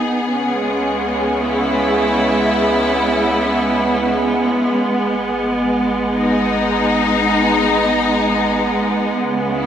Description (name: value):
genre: ambient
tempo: 54 BPM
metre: 4/4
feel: straight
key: unclear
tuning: A4 = 438 Hz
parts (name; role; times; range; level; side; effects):
- clear symphonic string section; sustained chords; 0.0-9.7 s; C#3 to G#4; -15 LUFS; equal; none
- warm sub bass; bass; 0.0-9.7 s; G#1 to C#2; -36 LUFS; equal; none
- organ-like drone; drone; 1.2-9.7 s; B3; -31 LUFS; right 1 dB; none
room: wet spring reverb, RT60 2.2 s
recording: none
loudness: -14 LUFS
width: side -9 dB against mid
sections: 0.0-9.7 A section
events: fade-in on sub bass 0.0-9.7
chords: 0.3 C#m7; 4.7 G#m